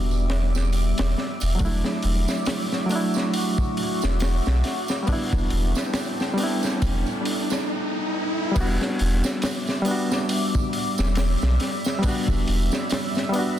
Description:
trip hop; 69 BPM; 4/4; swing 58% on 16ths; E minor; A4 = 440 Hz
bright reed electric piano; accompaniment; 0.0-13.6 s; F#3 to F#4; -27 LUFS; equal; harmonic tremolo, tape echo
deep dark ambient pad; sustained chords; 0.0-13.6 s; G3 to E6; -31 LUFS; left 1 dB; chorus, built-in reverb, vintage 12-bit sampler grit
soft dub sub bass; bass; 0.0-12.7 s; E1 to B1; -22 LUFS; equal; tube saturation
tambourine and triangle; percussion; 0.1-13.5 s; -39 LUFS; right 8 dB
crunchy breakbeat drum kit; drums; 0.3-13.6 s; crash cymbal, hi-hat, kick drum, snare drum; -27 LUFS; equal
riser; sound effects; 4.1-8.6 s; -32 LUFS; equal
small room ambience; dense, heavily limited modern master; -21 LUFS; side -12 dB against mid
0.0-8.6 A section; 8.6-13.6 B section
riser 4.1-8.6
0.0 Em7; 1.6 Dadd9/E; 5.1 A7sus4/E; 8.6 Em7
0.73 | 1.60 2.47 3.34 4.21 | 5.08 5.95 6.82 7.69 | 8.55 9.43 10.29 11.16 | 12.03 12.90

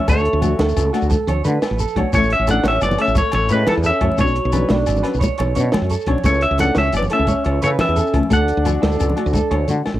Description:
highlife guitar band; 117 BPM (dotted quarters); 12/8; straight; A major; A4 = 440 Hz
semi-hollow electric guitar; melody; 0.0-10.0 s; A4 to F#5; -20 LUFS; equal; cassette tape
breathy alto saxophone; second line; 0.0-10.0 s; E3 to D4; -26 LUFS; left 5 dB
nylon-string guitar; accompaniment; 0.0-9.8 s; E3 to F#4; -24 LUFS; left 5 dB
electric guitar through a small old amp; arpeggios; 0.0-9.7 s; D4 to C#5; -23 LUFS; right 6 dB; tape echo
congas; percussion; 0.0-10.0 s; -24 LUFS; equal
woody fretless electric bass; bass; 0.1-10.0 s; F#1 to D3; -20 LUFS; equal
compact cocktail drum kit; drums; 0.1-9.9 s; hi-hat, kick drum, snare drum; -23 LUFS; equal; cassette tape
agogo bells; percussion; 0.1-10.0 s; -33 LUFS; left 7 dB
shekere; percussion; 0.1-9.8 s; -28 LUFS; left 2 dB
light reverb; home recording on cassette; -15 LUFS; side -14 dB against mid
0.0-10.0 A section
drum fill 1.6-2.1, 9.5-10.0
0.1 D; 2.1 A; 4.2 Bmadd9; 6.2 A; 8.3 D
| 0.08 0.59 1.10 1.62 | 2.13 2.65 3.16 3.67 | 4.19 4.70 5.22 5.73 | 6.25 6.76 7.28 7.79 | 8.31 8.82 9.34 9.85

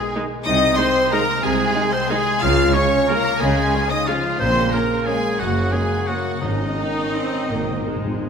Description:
classical, orchestral ballroom waltz; 159-197 BPM; 3/4; rubato; A4 = 439 Hz
rich chamber violin section; melody; 0.0-8.2 s; Eb5 to F6; -26 LUFS; left 3 dB
warm oboe; second line; 0.0-8.2 s; Eb4 to F5; -25 LUFS; right 1 dB
warm symphonic violin section; second line; 0.0-8.2 s; Eb4 to F5; -25 LUFS; left 1 dB
mellow French horn section; sustained chords; 0.0-8.2 s; Eb3 to F4; -25 LUFS; left 3 dB
concert harp; arpeggios; 0.0-8.3 s; Gb2 to D#6; -28 LUFS; left 6 dB
rich chamber viola section; accompaniment; 0.1-8.3 s; G#3 to D#4; -29 LUFS; right 1 dB
warm trombone section; sustained chords; 0.1-8.3 s; Db3 to Db4; -30 LUFS; right 4 dB
rich chamber cello section; bass; 0.5-7.8 s; Gb2 to Db3; -27 LUFS; right 3 dB
warm studio double bass section; bass; 0.5-7.8 s; Gb1 to Db2; -26 LUFS; right 3 dB
timpani; percussion; 6.4-8.3 s; Ab2; -29 LUFS; left 1 dB
wet concert hall reverb, RT60 2.1 s; minimal, uncompressed stereo recording; -17 LUFS; side -6 dB against mid
0.0-8.3 A section
timpani fill 7.5-8.3
0.5 Ab/C; 2.4 Db; 4.4 Bbm; 5.4 Gb; 6.4 Absus4; 7.5 Ab
0.14 | 0.46 0.79 1.12 | 1.44 1.76 2.10 | 2.42 2.75 3.09 | 3.41 3.74 4.08 | 4.40 4.73 5.07 | 5.39 5.73 6.08 | 6.42 6.78 7.15 | 7.49 7.83 8.20

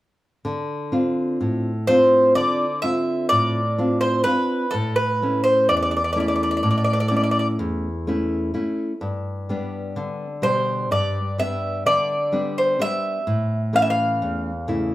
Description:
greek folk; 126 BPM (eighths); 9/8; straight; D dorian; A4 = 440 Hz
nylon-string guitar; accompaniment; 0.4-14.9 s; E2 to F4; -23 LUFS; equal
Greek bouzouki; melody; 1.9-14.9 s; A4 to F5; -20 LUFS; equal
wet studio reverb, RT60 0.5 s; heard from further back in the room; -19 LUFS; side -16 dB against mid
0.4-14.9 A section
0.4 Dm7; 4.7 A; 9.0 G; 13.3 A
| 0.45 0.92 1.40 1.87 2.35 2.83 3.30 3.78 4.25 | 4.73 5.21 5.68 6.16 6.63 7.11 7.58 8.06 8.53 | 9.01 9.48 9.96 10.43 10.91 11.38 11.86 12.33 12.80 | 13.28 13.75 14.22 14.70

